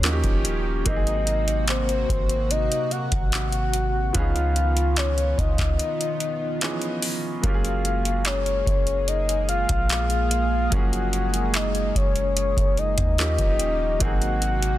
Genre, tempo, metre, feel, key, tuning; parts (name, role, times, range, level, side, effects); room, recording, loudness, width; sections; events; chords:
contemporary R&B; 73 BPM; 4/4; straight; F# major; A4 = 440 Hz
soft octave-layered synth lead; melody; 0.0-14.8 s; B#4 to F#5; -26 LUFS; left 2 dB; chorus, tremolo, ping-pong delay
clear grand piano; accompaniment; 0.0-14.8 s; E3 to D#5; -32 LUFS; right 3 dB
chorused pulse-width pad; sustained chords; 0.0-14.8 s; B#2 to G#4; -31 LUFS; right 1 dB
soft 808-style bass; bass; 0.0-14.8 s; D#1 to D#2; -25 LUFS; equal
booming analog drum machine; drums; 0.0-14.8 s; handclaps, hi-hat, kick drum; -24 LUFS; equal
downlifter; sound effects; 0.0-0.9 s; barely audible
digital ambience; dense, heavily limited modern master; -20 LUFS; side -14 dB against mid
0.0-14.8 A section
break 5.8-7.4; grand piano fill 6.2-7.4
0.0 D#7; 0.9 G#9; 4.1 C#9; 7.4 F#maj9; 13.2 D#7; 14.0 G#9